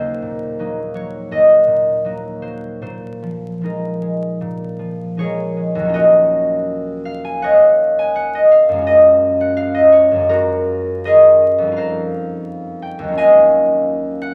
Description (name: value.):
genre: classical, solo harp piece.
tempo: 74-86 BPM.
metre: 4/4.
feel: rubato.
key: Eb minor.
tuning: A4 = 439 Hz.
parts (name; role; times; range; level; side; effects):
concert harp; solo; 0.0-14.3 s; Eb2 to Bb5; -15 LUFS; equal; none.
room: wet recital hall reverb, RT60 1.4 s.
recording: vinyl crackle.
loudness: -14 LUFS.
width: mono.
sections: 0.0-5.9 A section; 5.9-14.3 A section.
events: none.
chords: 0.0 Ebm6; 2.8 Bb7sus4; 5.9 Ebm9; 8.9 Gbmaj9; 11.8 Fm11; 13.2 Ebm11.